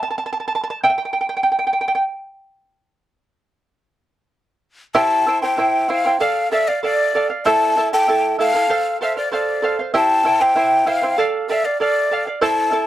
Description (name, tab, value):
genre	andean folk, Andean ensemble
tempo	96 BPM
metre	2/4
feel	straight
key	unclear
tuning	A4 = 439 Hz
part	charango	accompaniment	0.0-2.0, 4.9-12.9 s	E4 to A5	-19 LUFS	right 3 dB	none
part	breathy mellow quena	melody	5.0-12.9 s	D5 to A5	-18 LUFS	left 2 dB	analog delay
room	moderate studio reverb, RT60 0.6 s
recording	none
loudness	-16 LUFS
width	side -13 dB against mid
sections	0.0-4.9 A section; 4.9-12.9 B section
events	charango solo 0.0-4.9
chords	0.0 N.C.; 4.9 C; 6.2 Dm; 7.4 Am; 8.7 F; 9.9 C; 11.2 Dm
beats	0.53 | 1.16 1.79 | 2.42 3.06 | 3.69 4.32 | 4.94 5.57 | 6.20 6.82 | 7.45 8.07 | 8.70 9.32 | 9.94 10.56 | 11.18 11.80 | 12.42